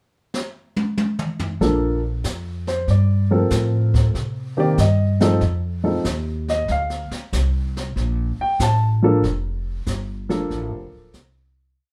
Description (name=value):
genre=jazz piano trio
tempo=94 BPM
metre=4/4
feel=swing 68% on 8ths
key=Bb major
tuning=A4 = 440 Hz
part: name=jazz brush drum kit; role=drums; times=0.3-11.9 s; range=brushed snare drum, hi-hat, kick drum, snare drum, toms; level=-28 LUFS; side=equal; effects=none
part: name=warm grand piano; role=melody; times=1.6-11.1 s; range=Eb3 to A5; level=-23 LUFS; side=equal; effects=none
part: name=upright bass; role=bass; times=1.6-11.8 s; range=D1 to C3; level=-23 LUFS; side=equal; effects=none
room=moderate studio ambience, RT60 0.5 s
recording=heard from further back in the room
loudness=-21 LUFS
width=mono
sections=0.0-1.6 pickup bar; 1.6-11.8 A section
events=drum fill 0.3-1.6; fade-out 9.2-11.8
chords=0.0 N.C.; 1.6 Bbmaj7; 2.9 Gm11; 4.1 Cm; 5.4 F7(no3); 6.7 Bbmaj7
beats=0.33 0.96 | 1.60 2.24 2.87 3.51 | 4.14 4.78 5.42 6.05 | 6.69 7.32 7.96 8.59 | 9.23 9.87 10.50 11.14